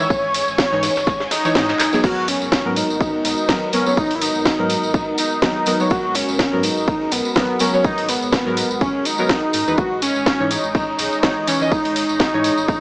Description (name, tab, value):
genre	deep house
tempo	124 BPM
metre	4/4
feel	swing 56% on 16ths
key	G# minor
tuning	A4 = 440 Hz
part	warm velvety synth lead	melody	0.0-12.8 s	B3 to C#5	-20 LUFS	equal	chorus, digital delay
part	dark analog pad	sustained chords	0.0-12.8 s	G#3 to C#5	-28 LUFS	equal	chorus, sidechain pumping
part	deep mellow chord stab	stabs	0.0-12.5 s	D#3 to E5	-22 LUFS	equal	chorus, sidechain pumping, digital delay
part	tambourine	percussion	0.0-12.8 s	none	-28 LUFS	equal	none
part	string machine, violins	texture	0.0-2.0 s	G#5 to G#6	-32 LUFS	equal	none
part	sub bass with octave	bass	0.1-12.8 s	D#1 to G#2	-36 LUFS	equal	sidechain pumping
part	electronic kick drum	drums	0.1-12.8 s	none	-20 LUFS	equal	none
part	soft brush drum kit	drums	0.1-12.8 s	hi-hat, ride cymbal, snare drum	-30 LUFS	left 1 dB	sidechain pumping on cymbals, high-pass filter on cymbals, sidechain pumping on hats, high-pass filter on hats, high-pass filter on snare, high-pass filter on room
part	house drum kit	drums	0.3-12.5 s	crash cymbal, handclaps, hi-hat, snare drum	-22 LUFS	equal	none
room	moderate echo chamber reverb, RT60 1.7 s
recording	small speaker sound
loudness	-16 LUFS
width	side -23 dB against mid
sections	0.0-2.0 A section; 2.0-12.8 A section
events	drop 0.0-2.0, 2.0-12.8; kick drops out 1.6-2.0; drum fill 1.8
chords	0.0 C#madd9/G#; 2.0 G#m9; 9.8 C#madd9/G#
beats	| 0.10 0.59 1.07 1.55 | 2.04 2.52 3.01 3.49 | 3.97 4.46 4.94 5.42 | 5.91 6.39 6.88 7.36 | 7.84 8.33 8.81 9.30 | 9.78 10.26 10.75 11.23 | 11.71 12.20 12.68